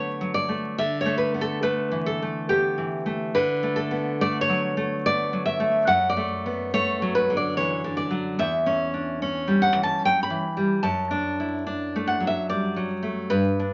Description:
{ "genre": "romantic piece for solo classical guitar", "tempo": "72 BPM", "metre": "3/4", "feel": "uneven beats, rubato", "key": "D major", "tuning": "A4 = 439 Hz", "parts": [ { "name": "nylon-string guitar", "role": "solo", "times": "0.0-13.7 s", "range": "E2 to B5", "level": "-24 LUFS", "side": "equal", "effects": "none" } ], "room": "moderate club reverb, RT60 0.8 s", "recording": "vinyl crackle, nothing above 7.6 kHz", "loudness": "-25 LUFS", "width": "mono", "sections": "0.0-13.7 A section", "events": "none", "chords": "0.0 D; 0.8 A5/D; 3.3 D; 5.9 D/F#; 8.4 C#dim/E; 10.9 D/F#" }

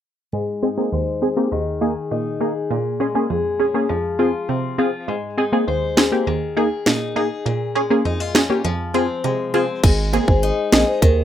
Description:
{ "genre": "dancehall", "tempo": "101 BPM", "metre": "4/4", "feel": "straight", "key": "Ab major", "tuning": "A4 = 438 Hz", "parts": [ { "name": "punchy chord stab", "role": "accompaniment", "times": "0.3-10.8 s", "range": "Eb2 to Ab4", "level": "-20 LUFS", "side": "right 1 dB", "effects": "chorus, low-pass filter" }, { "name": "picked acoustic archtop guitar", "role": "arpeggios", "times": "0.3-11.2 s", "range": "Bb2 to C5", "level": "-23 LUFS", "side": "left 5 dB", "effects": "low-pass filter" }, { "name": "island pop drum kit", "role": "drums", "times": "6.0-11.2 s", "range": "crash cymbal, finger snaps, kick drum, snare drum", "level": "-16 LUFS", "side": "right 1 dB", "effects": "none" }, { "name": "saturated sub bass", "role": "bass", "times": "9.8-11.2 s", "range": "Ab1 to Eb2", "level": "-20 LUFS", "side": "right 1 dB", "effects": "none" }, { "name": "marimba with medium mallets", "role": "melody", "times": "10.3-11.2 s", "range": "Bb4 to Eb5", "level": "-21 LUFS", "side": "equal", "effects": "none" } ], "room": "moderate small room reverb, RT60 0.6 s", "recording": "rough home demo mix", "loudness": "-17 LUFS", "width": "side -10 dB against mid", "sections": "0.3-9.8 A section; 9.8-11.2 B section", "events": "filter sweep 0.3-9.8; silent gap 9.2-9.8", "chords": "0.3 Abadd9; 1.5 Ebsus4; 2.7 Bbm7; 3.9 Fm; 5.1 Abadd9; 6.3 Ebsus4; 7.5 Bbm7; 8.6 Fm; 9.8 Abadd9" }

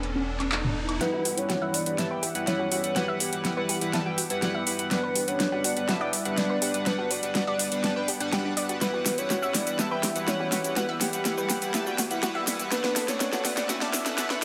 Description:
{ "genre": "progressive house", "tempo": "123 BPM", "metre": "4/4", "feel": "straight", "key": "E dorian", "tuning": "A4 = 440 Hz", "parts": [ { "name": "supersaw pad", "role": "sustained chords", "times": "0.0-14.4 s", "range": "E3 to F#5", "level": "-39 LUFS", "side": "equal", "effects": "low-pass filter" }, { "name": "round analog bass", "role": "bass", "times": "0.0-14.4 s", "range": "none", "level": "barely audible", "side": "none", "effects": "none" }, { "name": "big-room dance drum kit", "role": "drums", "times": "0.0-14.4 s", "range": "handclaps, hi-hat, shaker, snare drum", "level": "-31 LUFS", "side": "equal", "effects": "overdrive, low-pass filter on hats, low-pass filter on snare, low-pass filter on perc" }, { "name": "riser", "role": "sound effects", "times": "0.0-1.0, 11.5-14.4 s", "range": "none", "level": "-40 LUFS", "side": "equal", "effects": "none" }, { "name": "electronic congas, woodblock and toms", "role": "percussion", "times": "0.2-1.0 s", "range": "none", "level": "-33 LUFS", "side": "equal", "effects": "none" }, { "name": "soft octave-layered synth lead", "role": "melody", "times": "1.0-14.4 s", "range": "G4 to E5", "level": "-34 LUFS", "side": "equal", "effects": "chorus, tremolo, digital delay" }, { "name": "analog pluck", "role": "arpeggios", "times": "1.0-14.4 s", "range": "D4 to F#5", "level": "-37 LUFS", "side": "equal", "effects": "chorus, digital delay" }, { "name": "chorused polysynth", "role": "stabs", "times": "1.0-14.4 s", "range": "G3 to A5", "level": "-33 LUFS", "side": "equal", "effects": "cassette tape, digital delay" } ], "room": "moderate lush hall reverb, RT60 2.3 s", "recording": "high-pass filter", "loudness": "-27 LUFS", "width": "mono", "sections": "0.0-1.0 A section; 1.0-14.4 B section", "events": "riser 0.0-1.0; build-up 1.0-14.4; drum fill 1.0-14.4; filter sweep on synth pluck 1.0-14.4; filter sweep on supersaw synth 1.0-14.4", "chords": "0.0 Bm7/E; 1.0 Emadd9; 4.9 Gmaj7/E; 8.8 Emadd9; 12.7 Bm7/E" }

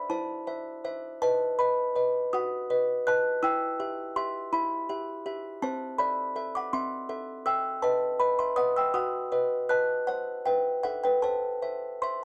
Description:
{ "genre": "classical, lullaby for music box", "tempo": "54 BPM (dotted quarters)", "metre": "6/8", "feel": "rubato", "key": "unclear", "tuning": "A4 = 441 Hz", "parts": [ { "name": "music box", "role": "solo", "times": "0.0-12.2 s", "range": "C4 to F#6", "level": "-29 LUFS", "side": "equal", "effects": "none" } ], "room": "moderate studio reverb, RT60 0.5 s", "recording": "dark, warm production", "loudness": "-29 LUFS", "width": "mono", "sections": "0.0-12.2 A section", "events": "none", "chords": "0.0 Am; 1.2 B; 3.4 Em; 5.6 Am/C; 7.8 B; 10.1 C; 11.2 Am" }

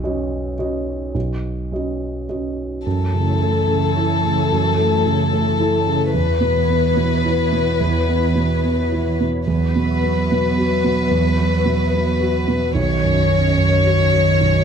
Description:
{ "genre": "neoclassical piano and strings", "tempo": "109 BPM", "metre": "3/4", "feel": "rubato", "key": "unclear", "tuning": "A4 = 441 Hz", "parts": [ { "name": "dark concert grand piano", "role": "accompaniment", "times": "0.0-14.6 s", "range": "B1 to D#5", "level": "-19 LUFS", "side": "right 2 dB", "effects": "none" }, { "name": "warm chamber violin section", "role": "melody", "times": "2.9-14.6 s", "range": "A4 to C#5", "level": "-20 LUFS", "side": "left 6 dB", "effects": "none" }, { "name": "dark cello", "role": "second line", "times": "2.9-14.6 s", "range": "D#3 to F#3", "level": "-24 LUFS", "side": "right 8 dB", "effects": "slapback echo" }, { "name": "hollow soft pad", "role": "sustained chords", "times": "3.0-14.6 s", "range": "A3 to E5", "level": "-29 LUFS", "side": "equal", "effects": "ensemble chorus" } ], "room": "moderate recital hall reverb, RT60 1.4 s", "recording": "dark, warm production", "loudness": "-16 LUFS", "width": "side -7 dB against mid", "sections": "0.0-2.9 A section; 2.9-14.6 A section", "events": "none", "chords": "0.0 Badd9; 2.9 F#m7; 6.2 C#m7/E; 9.5 Esus2; 12.8 Badd9" }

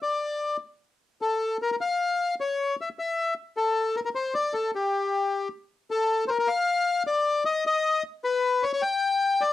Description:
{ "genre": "tango", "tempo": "153 BPM", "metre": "3/4", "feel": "rubato", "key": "unclear", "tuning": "A4 = 443 Hz", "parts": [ { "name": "bandoneon", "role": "solo", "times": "0.0-9.5 s", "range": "G4 to G5", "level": "-24 LUFS", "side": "left 3 dB", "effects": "cassette tape" } ], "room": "moderate studio reverb, RT60 0.5 s", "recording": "home recording on cassette", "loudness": "-24 LUFS", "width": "side -13 dB against mid", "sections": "0.0-5.9 A section; 5.9-9.5 B section", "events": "none", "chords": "none" }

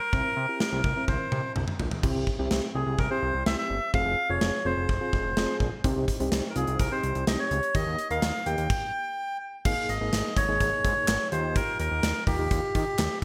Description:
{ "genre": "synth-pop", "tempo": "126 BPM", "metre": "4/4", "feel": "straight", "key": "unclear", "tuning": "A4 = 445 Hz", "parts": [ { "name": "melodica", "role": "melody", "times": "0.0-13.2 s", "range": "G4 to G5", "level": "-31 LUFS", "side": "equal", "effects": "digital delay" }, { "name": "soft electric-piano-like synth keys", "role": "accompaniment", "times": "0.1-13.0 s", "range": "Bb3 to Bb4", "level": "-36 LUFS", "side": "equal", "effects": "chorus, tremolo" }, { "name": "fat analog bass", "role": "bass", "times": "0.1-13.2 s", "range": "F1 to Eb3", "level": "-33 LUFS", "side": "equal", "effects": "none" }, { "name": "gated 80s drum kit", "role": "drums", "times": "0.1-13.2 s", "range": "crash cymbal, handclaps, hi-hat, kick drum, snare drum, toms", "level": "-31 LUFS", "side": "equal", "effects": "gated reverb" } ], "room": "moderate lush hall reverb, RT60 1.6 s, studio ambience", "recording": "bright 1980s-style digital production", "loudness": "-27 LUFS", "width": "mono", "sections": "0.0-2.0 A section; 2.0-9.7 B section; 9.7-13.2 C section", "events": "drum fill 1.1-2.0; stop 8.7-9.7", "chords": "0.0 C7; 2.0 C; 3.9 Fm; 5.8 Cm; 7.7 Eb; 9.7 Absus2; 11.3 Ebadd9" }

